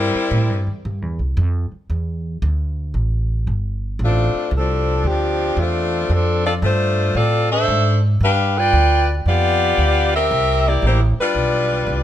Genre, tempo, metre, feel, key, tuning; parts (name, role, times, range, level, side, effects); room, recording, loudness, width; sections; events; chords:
jazz, big band swing; 114 BPM; 4/4; swing 67% on 8ths; A4 = 441 Hz
warm saxophone section; melody; 0.0-0.7, 4.0-12.0 s; F3 to G5; -18 LUFS; left 1 dB; plate reverb
upright bass; bass; 0.0-12.0 s; G1 to A2; -19 LUFS; right 1 dB
light reverb; -16 LUFS; side -11 dB against mid
0.0-12.0 A section
0.0 C7; 1.9 Dsus2; 3.0 Gsus2; 4.0 Dm7; 8.2 G7; 10.3 C7; 11.4 G7